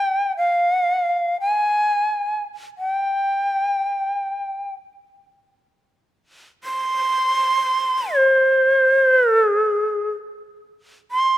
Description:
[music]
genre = japanese traditional, Japanese chamber music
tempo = free time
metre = none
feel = none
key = unclear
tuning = A4 = 440 Hz
[part]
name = breathy bright shakuhachi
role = solo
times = 0.0-11.4 s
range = C5 to C6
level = -17 LUFS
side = equal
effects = none
[sound]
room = light reverb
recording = close, detailed microphones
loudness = -17 LUFS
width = side -14 dB against mid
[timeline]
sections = 0.0-10.3 A section; 10.3-11.4 A section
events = none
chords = none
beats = free time

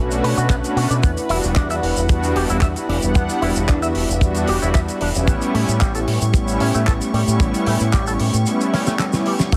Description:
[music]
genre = nu-disco, nu disco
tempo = 113 BPM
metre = 4/4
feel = straight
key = unclear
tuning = A4 = 438 Hz
[part]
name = warm analog pad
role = accompaniment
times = 0.0-9.3 s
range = G3 to F#5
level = -24 LUFS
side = equal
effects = chorus, cassette tape, sidechain pumping, analog delay
[part]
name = dark studio string section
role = sustained chords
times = 0.0-9.6 s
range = D3 to C#6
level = -29 LUFS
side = equal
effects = sidechain pumping
[part]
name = fingered electric bass with an envelope filter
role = bass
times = 0.0-9.6 s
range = E1 to B2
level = -24 LUFS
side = equal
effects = none
[part]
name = damped 70s drum kit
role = drums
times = 0.1-9.6 s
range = handclaps, hi-hat, shaker, snare drum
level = -28 LUFS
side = equal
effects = none
[part]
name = electric guitar with an envelope filter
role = riff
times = 0.2-9.6 s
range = E3 to E5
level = -28 LUFS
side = equal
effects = subtle chorus, analog delay
[part]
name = kick drum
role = drums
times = 0.5-9.6 s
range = none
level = -19 LUFS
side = equal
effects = none
[sound]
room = light reverb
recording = heavily compressed radio sound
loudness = -19 LUFS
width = mono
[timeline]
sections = 0.0-9.6 A section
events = drum fill 8.7-9.5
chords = 0.0 Bm7; 1.0 Em9; 5.3 A7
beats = 0.50 | 1.03 1.56 2.09 2.62 | 3.15 3.69 4.22 4.75 | 5.28 5.81 6.34 6.87 | 7.40 7.93 8.46 8.99 | 9.53

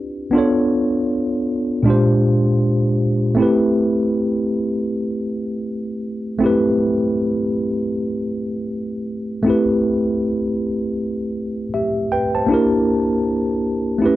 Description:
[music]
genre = hip hop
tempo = 79 BPM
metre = 4/4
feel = swing 59% on 16ths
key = A minor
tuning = A4 = 440 Hz
[part]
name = mellow tine electric piano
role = solo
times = 0.0-14.2 s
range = Bb2 to A5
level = -17 LUFS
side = equal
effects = medium stereo tremolo, low-pass filter
[sound]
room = wet studio ambience, RT60 0.5 s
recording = dark, warm production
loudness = -17 LUFS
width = side -15 dB against mid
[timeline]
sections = 0.0-9.4 A section; 9.4-14.2 B section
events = none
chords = 0.3 Bm7b5; 1.9 Bb13; 3.4 Am7; 12.5 Em7b5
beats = | 0.34 1.09 1.85 2.61 | 3.37 4.13 4.89 5.65 | 6.41 7.17 7.93 8.69 | 9.45 10.21 10.97 11.73 | 12.49 13.25 14.01

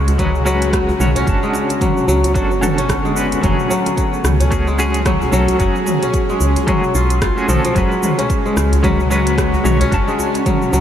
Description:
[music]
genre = organic downtempo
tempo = 111 BPM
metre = 4/4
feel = swing 58% on 16ths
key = F# minor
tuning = A4 = 441 Hz
[part]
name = semi-hollow electric guitar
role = accompaniment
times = 0.0-10.8 s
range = D3 to A5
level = -21 LUFS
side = right 1 dB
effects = tremolo, sidechain pumping, diffuse ambient delay
[part]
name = bowed-like drone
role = sustained chords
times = 0.0-10.8 s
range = C#3 to G#4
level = -24 LUFS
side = left 1 dB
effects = built-in reverb, phaser, sidechain pumping
[part]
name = kora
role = arpeggios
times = 0.0-10.8 s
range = E#3 to E#4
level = -19 LUFS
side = left 1 dB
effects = vintage 12-bit sampler grit, diffuse ambient delay
[part]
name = woody FM bass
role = bass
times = 0.0-10.8 s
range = F#1 to C#2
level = -18 LUFS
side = equal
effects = sidechain pumping
[part]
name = organic electronic drum kit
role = drums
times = 0.1-10.8 s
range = cabasa, hi-hat, rim click, toms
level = -23 LUFS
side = left 1 dB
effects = overdrive
[part]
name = djembe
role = percussion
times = 0.1-10.8 s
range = none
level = -29 LUFS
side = right 1 dB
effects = none
[part]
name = electronic kick drum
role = drums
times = 0.2-10.6 s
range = none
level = -20 LUFS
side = equal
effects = overdrive
[sound]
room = wet huge ambient reverb, RT60 7.2 s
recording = dreamy mix soaked in reverb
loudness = -13 LUFS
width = side -10 dB against mid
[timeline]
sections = 0.0-10.8 A section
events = none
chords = 0.0 C#7sus4; 1.3 Bm9/F#; 3.4 F#madd9; 7.8 C#7sus4/F#; 9.9 Bm9/F#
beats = 0.19 0.73 | 1.27 1.81 2.35 2.89 | 3.43 3.97 4.51 5.05 | 5.60 6.14 6.68 7.22 | 7.76 8.30 8.84 9.38 | 9.92 10.46

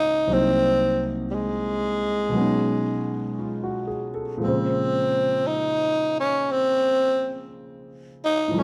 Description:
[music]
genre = jazz ballad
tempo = 58 BPM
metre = 4/4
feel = swing 68% on 8ths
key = Bb minor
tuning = A4 = 440 Hz
[part]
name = growling tenor saxophone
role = melody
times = 0.0-8.6 s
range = G3 to Eb4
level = -25 LUFS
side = equal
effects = none
[part]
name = warm concert grand piano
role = accompaniment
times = 0.0-8.6 s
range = C2 to C5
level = -29 LUFS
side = equal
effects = none
[sound]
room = moderate echo chamber reverb, RT60 2.1 s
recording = none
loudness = -24 LUFS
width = mono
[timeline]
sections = 0.0-8.6 A section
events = none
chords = 0.3 Cm7b5; 2.4 B69; 4.4 Bbm9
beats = | 0.29 1.32 2.35 3.39 | 4.42 5.45 6.48 7.51 | 8.54

